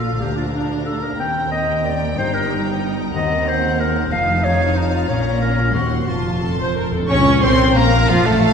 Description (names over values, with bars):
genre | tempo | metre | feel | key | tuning
classical | 183 BPM | 3/4 | straight | Bb minor from 3.1 s | A4 = 441 Hz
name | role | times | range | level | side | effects
rich symphonic violin section | melody | 0.0-8.5 s | F5 to Db6 | -28 LUFS | left 3 dB | none
mellow clarinet | second line | 0.0-8.5 s | D4 to G5 | -22 LUFS | left 1 dB | none
warm symphonic violin section | second line | 0.0-8.5 s | Db5 to A5 | -29 LUFS | left 2 dB | none
rich symphonic viola section | accompaniment | 0.0-8.5 s | F3 to C5 | -25 LUFS | right 1 dB | none
concert harp | arpeggios | 0.0-8.5 s | G2 to Bb5 | -25 LUFS | left 5 dB | none
rich symphonic cello section | bass | 0.0-8.5 s | D2 to Db4 | -24 LUFS | right 1 dB | none
rich symphonic double bass section | bass | 0.0-8.5 s | F1 to Eb2 | -23 LUFS | right 2 dB | none
timpani | percussion | 6.1-7.6 s | F2 to Bb2 | -26 LUFS | equal | none
bright oboe | second line | 7.1-8.5 s | F4 to Db5 | -23 LUFS | right 2 dB | none
mellow hollow concert flute | second line | 7.1-8.5 s | F5 to Db6 | -28 LUFS | left 3 dB | none
warm bassoon | accompaniment | 7.1-8.5 s | F3 to Db4 | -24 LUFS | right 2 dB | none
mellow French horn section | sustained chords | 7.1-8.5 s | F3 to Db4 | -22 LUFS | left 5 dB | none
room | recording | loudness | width
wet scoring stage reverb, RT60 1.9 s | dark, warm production | -16 LUFS | side -6 dB against mid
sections
0.0-7.1 A section; 7.1-8.5 B section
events
timpani fill 6.1-7.1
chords
0.2 Bb/D; 1.2 Eb6; 2.2 Eb/G; 3.1 Cm7b5/Eb; 4.1 F7; 5.1 Bbm; 5.7 Cdim/Eb; 6.1 F; 7.1 Bbm